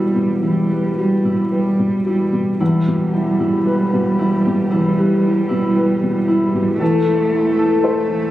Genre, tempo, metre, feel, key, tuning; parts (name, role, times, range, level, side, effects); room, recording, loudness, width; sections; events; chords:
neoclassical piano and strings; 54-58 BPM; 4/4; rubato; E minor; A4 = 441 Hz
muted cello; second line; 0.0-8.3 s; G3 to A3; -19 LUFS; right 2 dB
dark concert grand piano; accompaniment; 0.0-8.3 s; E2 to C5; -18 LUFS; left 1 dB
concert harp; arpeggios; 0.0-8.3 s; E4 to E5; -22 LUFS; left 1 dB; slapback echo
muted double bass; bass; 0.0-8.3 s; E1; -28 LUFS; equal
light reverb; recorded on a phone in the room, club reverb, compression; -15 LUFS; side -14 dB against mid
0.0-2.6 A section; 2.6-8.3 A section
0.0 Emadd9; 2.6 Em; 6.8 Am/E